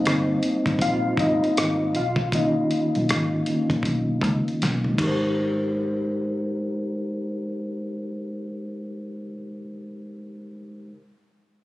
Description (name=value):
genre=R&B, neo-soul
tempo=79 BPM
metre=4/4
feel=swing 62% on 16ths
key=Ab major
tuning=A4 = 440 Hz
part: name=mellow tine electric piano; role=accompaniment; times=0.0-10.9 s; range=D#3 to F5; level=-24 LUFS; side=equal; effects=fast stereo tremolo
part: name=vintage muted fingered electric bass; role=bass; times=0.0-9.3 s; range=G1 to C#2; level=-28 LUFS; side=equal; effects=none
part: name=dusty soul sampler-style drum kit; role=drums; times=0.1-5.2 s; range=crash cymbal, hi-hat, kick drum, rim click, snare drum, toms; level=-27 LUFS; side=equal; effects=none
room=light reverb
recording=recorded on a phone in the room, studio reverb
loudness=-22 LUFS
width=side -16 dB against mid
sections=0.0-5.4 A section; 5.4-8.4 B section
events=tine electric piano solo 0.0-5.4; drum fill 4.6-5.4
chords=0.0 Abmaj9; 1.9 Bmaj9; 5.0 Abmaj9